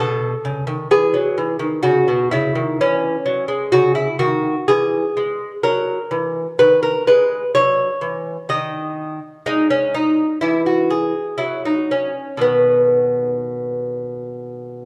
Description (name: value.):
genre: classical, baroque-style dance for lute.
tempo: 63 BPM.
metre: 3/4.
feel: uneven beats, rubato.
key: B major from 3.8 s.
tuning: A4 = 439 Hz.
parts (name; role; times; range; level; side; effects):
lute; solo; 0.0-14.9 s; B2 to D#5; -18 LUFS; equal; none.
room: moderate recital hall reverb, RT60 1.6 s.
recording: dark, warm production, lossy compression artefacts.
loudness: -18 LUFS.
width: mono.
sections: 0.0-14.9 A section.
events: none.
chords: 0.0 B7; 0.9 C#m; 5.6 F#7; 6.6 Emaj13/D#; 8.5 N.C.; 12.4 B.